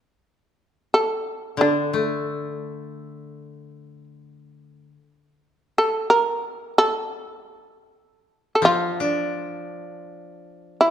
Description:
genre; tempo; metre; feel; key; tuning
japanese traditional, Japanese chamber music; free time; none; none; D hirajoshi; A4 = 440 Hz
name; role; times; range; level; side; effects
shamisen; melody; 0.9-10.9 s; D4 to Bb4; -19 LUFS; right 1 dB; none
koto; accompaniment; 1.6-10.9 s; D3 to D4; -25 LUFS; left 2 dB; none
room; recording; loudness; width
moderate scoring stage reverb, RT60 1.9 s; minimal, uncompressed stereo recording; -20 LUFS; side -10 dB against mid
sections
0.0-4.4 A section; 4.4-10.9 A section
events
none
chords
none

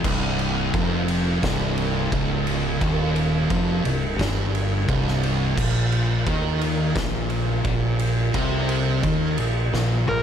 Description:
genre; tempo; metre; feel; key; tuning
stoner and doom metal; 87 BPM; 4/4; straight; C minor; A4 = 439 Hz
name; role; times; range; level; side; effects
thick fuzz guitar; riff; 0.0-10.2 s; C2 to Eb3; -25 LUFS; left 6 dB; distortion
thick fuzz guitar; riff; 0.0-10.2 s; C2 to Eb3; -25 LUFS; right 7 dB; distortion
growling fingered electric bass; bass; 0.0-10.2 s; C1 to Eb2; -28 LUFS; equal; overdrive
oversized low-tuned drum kit; drums; 0.0-10.2 s; crash cymbal, kick drum, ride cymbal, snare drum, toms; -26 LUFS; right 1 dB; none
fuzz lead guitar; melody; 10.1-10.2 s; Bb4; -21 LUFS; left 1 dB; distortion
room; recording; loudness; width
small room ambience; none; -20 LUFS; side -8 dB against mid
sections
0.0-10.2 A section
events
drum fill 9.7-10.2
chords
0.0 Cm; 5.6 Bbsus24

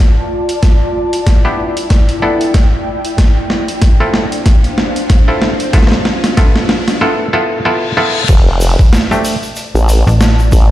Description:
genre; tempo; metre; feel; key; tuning
glitch hop; 94 BPM; 4/4; swing 57% on 16ths; unclear; A4 = 442 Hz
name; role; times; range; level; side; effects
riser and reverse cymbal; sound effects; 0.8-8.3 s; none; -23 LUFS; left 3 dB; none
ethereal airy pad; texture; 0.0-10.7 s; D4 to A5; -20 LUFS; left 1 dB; ensemble chorus, built-in reverb, sidechain pumping
boom bap sampler-style drum kit; drums; 0.5-10.7 s; crash cymbal, hi-hat, snare drum; -17 LUFS; right 1 dB; none
electronic kick drum; drums; 0.6-10.7 s; none; -8 LUFS; equal; overdrive
muted clav; stabs; 1.4-9.3 s; A3 to A4; -16 LUFS; equal; overdrive, sidechain pumping, tape echo
formant-sweep wobble bass; bass; 8.3-10.7 s; F1 to A1; -10 LUFS; equal; chorus
egg shaker; percussion; 8.3-10.7 s; none; -29 LUFS; left 2 dB; none
slap-like FM bass; bass; 10.1-10.5 s; A1; -9 LUFS; equal; none
room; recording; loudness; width
light reverb; played on a big sound system in a bare room, stone room reverb, faint mains hum; -10 LUFS; side -14 dB against mid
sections
0.0-8.3 A section; 8.3-10.7 B section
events
build-up 0.0-8.3; drum fill 0.0-7.0; riser 0.8-7.0; reverse cymbal 7.0-8.3; drop 8.3-10.7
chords
0.0 F6; 0.6 Em7; 3.2 Dm7; 5.7 G7 (rootless); 8.3 F6

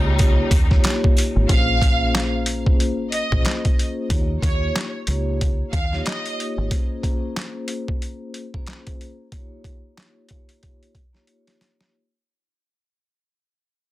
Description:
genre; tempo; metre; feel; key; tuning
hip hop, boom-bap hip-hop; 92 BPM; 4/4; swing 60% on 16ths; unclear; A4 = 440 Hz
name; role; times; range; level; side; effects
vibraphone with soft mallets; accompaniment; 0.0-11.9 s; Bb3 to Db5; -27 LUFS; left 2 dB; high-pass filter, low-pass filter, plate reverb
warm studio string section; sustained chords; 0.0-1.5 s; Db3 to Eb4; -29 LUFS; left 2 dB; high-pass filter, low-pass filter, plate reverb
deep dub fingered electric bass; bass; 0.0-6.7 s; Ab1 to Eb2; -22 LUFS; equal; none
boom bap sampler-style drum kit; drums; 0.2-11.9 s; handclaps, hi-hat, kick drum, snare drum; -20 LUFS; equal; none
sleigh bells; percussion; 0.2-1.3 s; none; -35 LUFS; right 5 dB; none
rich studio violin section; melody; 1.5-6.4 s; Db5 to F5; -26 LUFS; right 2 dB; high-pass filter, low-pass filter, digital delay
room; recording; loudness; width
light reverb; dense, heavily limited modern master; -18 LUFS; side -16 dB against mid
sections
0.0-1.5 A section; 1.5-11.9 B section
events
fade-out 1.5-11.9; break 6.7-11.9; drum fill 11.3-11.9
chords
0.0 Eb7; 1.5 Bbm9; 4.1 Eb7; 6.7 Bbm9; 9.3 Eb7

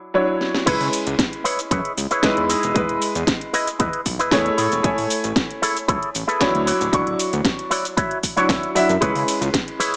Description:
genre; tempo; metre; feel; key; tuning
nu-disco, nu disco; 115 BPM; 4/4; straight; C# minor; A4 = 441 Hz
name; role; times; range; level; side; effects
dark grand piano; accompaniment; 0.0-10.0 s; F#3 to C#6; -25 LUFS; equal; sidechain pumping, slapback echo
house drum kit; drums; 0.4-10.0 s; crash cymbal, hi-hat, ride cymbal, shaker, snare drum; -26 LUFS; equal; studio reverb
electric guitar with an envelope filter; riff; 0.7-9.9 s; E4 to F#5; -25 LUFS; equal; analog chorus
fat analog bass; bass; 0.7-9.5 s; D1 to C#3; -29 LUFS; equal; none
electronic kick drum; drums; 0.7-9.7 s; none; -27 LUFS; equal; studio reverb
room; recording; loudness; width
light reverb, digital ambience; small speaker sound; -20 LUFS; mono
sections
0.7-10.0 A section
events
break 0.0-0.7; drum fill 0.4; drop 0.7-10.0; clean electric guitar fill 8.2-9.0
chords
0.0 Dmaj9; 0.7 C#m7; 2.5 Emaj7; 4.6 Amaj7; 6.7 Dmaj9; 9.0 C#m7

